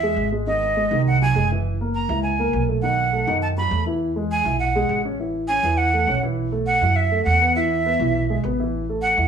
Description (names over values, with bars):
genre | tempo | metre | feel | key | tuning
latin, salsa | 203 BPM | 4/4 | straight | E major | A4 = 440 Hz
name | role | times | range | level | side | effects
breathy bright jazz flute | melody | 0.0-9.3 s | D#5 to B5 | -21 LUFS | right 2 dB | none
dark baby grand piano | accompaniment | 0.0-9.3 s | D#3 to E5 | -25 LUFS | left 2 dB | none
upright bass | bass | 0.0-9.3 s | F#1 to F#2 | -23 LUFS | right 3 dB | none
room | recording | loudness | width
moderate studio reverb, RT60 0.8 s | band playing live in one room | -18 LUFS | side -7 dB against mid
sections
0.0-9.3 A section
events
none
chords
0.5 G#7; 1.6 F#7; 2.8 B7; 4.0 E; 5.2 A69; 6.4 B7sus4; 7.6 E; 8.7 A5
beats
0.17 | 0.47 0.76 1.06 1.35 | 1.65 1.94 2.24 2.54 | 2.83 3.13 3.42 3.72 | 4.01 4.31 4.60 4.90 | 5.19 5.49 5.78 6.08 | 6.37 6.67 6.96 7.26 | 7.55 7.85 8.14 8.44 | 8.73 9.03